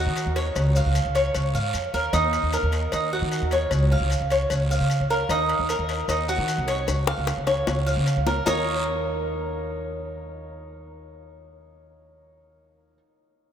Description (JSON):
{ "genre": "latin, Cuban son and guajira", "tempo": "152 BPM", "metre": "4/4", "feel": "straight", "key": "Eb minor", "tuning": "A4 = 441 Hz", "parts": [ { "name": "Cuban tres", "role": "arpeggios", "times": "0.0-13.0 s", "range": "Eb4 to F5", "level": "-25 LUFS", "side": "right 1 dB", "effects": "none" }, { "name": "upright bass", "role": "bass", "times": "0.0-13.0 s", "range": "C2 to Eb3", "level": "-25 LUFS", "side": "equal", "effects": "none" }, { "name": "cowbell and bongos", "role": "percussion", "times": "0.2-8.6 s", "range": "none", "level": "-33 LUFS", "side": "left 6 dB", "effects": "none" }, { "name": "guiro", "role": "percussion", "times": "0.2-8.6 s", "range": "none", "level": "-39 LUFS", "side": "right 4 dB", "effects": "none" }, { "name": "maracas", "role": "percussion", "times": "0.2-8.6 s", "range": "none", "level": "-39 LUFS", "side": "left 4 dB", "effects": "none" } ], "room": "wet cathedral reverb, RT60 5.2 s", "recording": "in a vast, echoing space", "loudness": "-21 LUFS", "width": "side -9 dB against mid", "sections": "0.0-8.5 A section; 8.5-11.6 B section", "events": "drum fill 6.9-8.5", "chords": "0.0 Ebm7; 0.6 Db; 2.1 Ebm7; 3.7 Db; 5.3 Ebm7; 6.9 Db; 8.5 Eb5" }